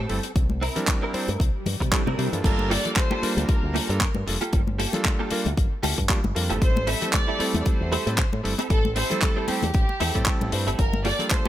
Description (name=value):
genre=nu-disco, nu disco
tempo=115 BPM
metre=4/4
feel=swing 56% on 16ths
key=G dorian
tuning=A4 = 435 Hz
part: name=direct-recorded clean electric guitar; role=riff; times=0.0-11.5 s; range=Bb3 to Bb4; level=-30 LUFS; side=right 2 dB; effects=ensemble chorus, ping-pong delay
part: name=fingered electric bass with an envelope filter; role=bass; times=0.0-11.1 s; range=F1 to C3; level=-27 LUFS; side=equal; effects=none
part: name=clear electric grand piano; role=accompaniment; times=0.1-11.5 s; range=G3 to C5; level=-30 LUFS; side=right 1 dB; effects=ping-pong delay
part: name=damped 70s drum kit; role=drums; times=0.1-11.4 s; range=crash cymbal, handclaps, hi-hat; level=-28 LUFS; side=left 1 dB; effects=studio reverb
part: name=electronic kick drum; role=drums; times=0.4-11.4 s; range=none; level=-23 LUFS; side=equal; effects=studio reverb
part: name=congas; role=percussion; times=0.5-11.5 s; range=none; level=-32 LUFS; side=left 4 dB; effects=none
part: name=swell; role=sound effects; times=1.5-2.4 s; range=none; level=-33 LUFS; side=left 1 dB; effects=none
part: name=warm studio violin section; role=melody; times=2.4-11.5 s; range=G4 to E5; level=-30 LUFS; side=equal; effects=dub echo
room=studio ambience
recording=none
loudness=-21 LUFS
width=side -13 dB against mid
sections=0.0-2.4 A section; 2.4-11.5 B section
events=swell 1.5-2.4; drop 2.4-11.5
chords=0.4 C7; 2.4 Gm9; 6.6 Am7; 10.8 Gm9